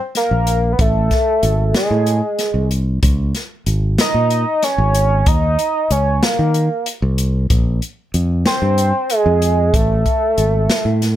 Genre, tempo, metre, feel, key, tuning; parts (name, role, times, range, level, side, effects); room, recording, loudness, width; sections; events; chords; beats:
progressive instrumental, band music in an uneven meter; 188 BPM (eighths); 7/8; straight; A4 = 440 Hz
swinging big-band drum kit; drums; 0.1-11.2 s; hi-hat, kick drum, snare drum; -19 LUFS; equal
lead with added fifth; melody; 0.2-11.2 s; G#4 to Eb5; -17 LUFS; right 1 dB; chorus
fingered electric bass; bass; 0.3-11.1 s; G#1 to Eb3; -16 LUFS; equal
light reverb; -14 LUFS; side -12 dB against mid
0.0-11.2 A section
0.0 Bb5; 0.8 Ammaj7/G#; 3.0 Db5; 5.3 Eb5; 7.5 Bb5; 9.7 Amaj7(no3)
0.15 0.47 | 0.79 1.11 1.43 1.75 2.07 2.39 2.71 | 3.03 3.35 3.67 3.99 4.31 4.63 4.95 | 5.27 5.59 5.91 6.22 6.54 6.86 7.18 | 7.50 7.82 8.14 8.46 8.78 9.10 9.42 | 9.74 10.06 10.38 10.70 11.02